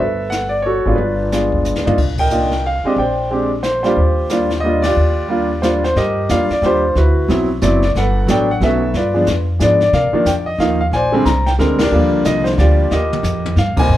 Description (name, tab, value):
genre	jazz piano trio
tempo	181 BPM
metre	3/4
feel	swing 62% on 8ths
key	Eb major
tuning	A4 = 440 Hz
part	clear concert grand piano	melody	0.0-14.0 s	C3 to Bb5	-15 LUFS	equal	plate reverb
part	upright bass	bass	0.0-14.0 s	F#1 to C3	-18 LUFS	equal	none
part	jazz brush drum kit	drums	0.3-14.0 s	brushed snare drum, hi-hat, kick drum, ride cymbal, snare drum, toms	-24 LUFS	left 1 dB	none
room	wet club reverb, RT60 0.7 s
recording	heard from further back in the room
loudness	-13 LUFS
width	side -13 dB against mid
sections	0.0-6.0 A section; 6.0-13.9 A section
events	drum fill 1.6-2.0, 12.9-13.6; band accent 2.1, 4.8, 11.8, 13.7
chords	0.0 Gmaj9; 1.0 G7b9; 2.0 Cm11; 3.0 Bb69; 4.0 Ebmaj9; 7.0 D13; 7.9 Gmaj9; 8.9 G7b9; 9.9 Cm11; 10.9 Bb13; 11.9 Ebmaj9